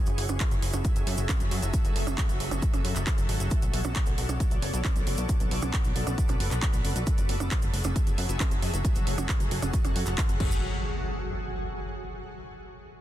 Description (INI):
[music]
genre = uplifting trance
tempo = 135 BPM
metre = 4/4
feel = straight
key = F# minor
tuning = A4 = 440 Hz
[part]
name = shimmering ambient pad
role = sustained chords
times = 0.0-10.6 s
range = F#3 to F#5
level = -35 LUFS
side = equal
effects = chorus, built-in reverb, sidechain pumping
[part]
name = plucky analog bass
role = bass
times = 0.1-10.6 s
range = F#1 to F#2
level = -30 LUFS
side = equal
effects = sidechain pumping
[part]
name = techno drum kit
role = drums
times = 0.1-10.5 s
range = crash cymbal, handclaps, hi-hat, percussion blips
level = -34 LUFS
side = right 3 dB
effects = none
[part]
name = tube shaker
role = percussion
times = 0.1-10.6 s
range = none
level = -42 LUFS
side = right 3 dB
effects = none
[part]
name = electronic kick drum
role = drums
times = 0.4-10.5 s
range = none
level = -27 LUFS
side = equal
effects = none
[part]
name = impact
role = sound effects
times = 10.5-12.2 s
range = none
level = -35 LUFS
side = equal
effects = none
[sound]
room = digital ambience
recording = dense, heavily limited modern master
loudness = -25 LUFS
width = side -13 dB against mid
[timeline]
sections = 0.0-10.6 A section; 10.6-12.4 B section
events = filter sweep on analog synth bass 0.0-10.6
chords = 0.0 F#m7; 3.5 Bm7; 7.1 F#m7; 10.6 N.C.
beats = 0.40 0.85 1.29 | 1.74 2.18 2.62 3.07 | 3.51 3.96 4.40 4.85 | 5.29 5.74 6.18 6.62 | 7.07 7.51 7.96 8.40 | 8.85 9.29 9.73 10.18 | 10.62 11.07 11.51 11.96